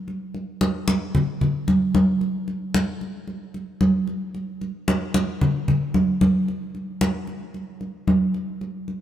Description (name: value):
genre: latin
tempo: 112 BPM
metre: 4/4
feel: straight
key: none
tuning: none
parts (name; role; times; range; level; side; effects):
- congas; percussion; 0.1-9.0 s; none; -21 LUFS; equal; none
room: wet plate reverb, RT60 2.6 s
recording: heard from further back in the room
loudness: -20 LUFS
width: side -11 dB against mid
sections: 0.0-9.0 A section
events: none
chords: none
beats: | 0.08 0.61 1.15 1.68 | 2.21 2.75 3.28 3.81 | 4.34 4.88 5.41 5.94 | 6.48 7.01 7.54 8.08 | 8.61